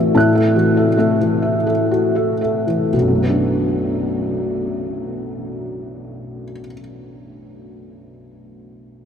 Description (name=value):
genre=neoclassical minimalist piano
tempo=38-52 BPM (dotted quarters)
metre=6/8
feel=rubato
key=B minor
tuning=A4 = 440 Hz
part: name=felt-muted upright piano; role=solo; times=0.0-9.1 s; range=B1 to F#6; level=-17 LUFS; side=left 1 dB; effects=none
room=wet huge ambient reverb, RT60 8.6 s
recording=in a vast, echoing space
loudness=-16 LUFS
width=side -8 dB against mid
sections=0.0-2.9 A section; 2.9-9.0 B section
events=slowing down 0.0-2.9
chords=0.0 F#m7/A; 2.9 Bm7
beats=| 0.15 1.42 | 2.93 4.45 | 5.96 7.49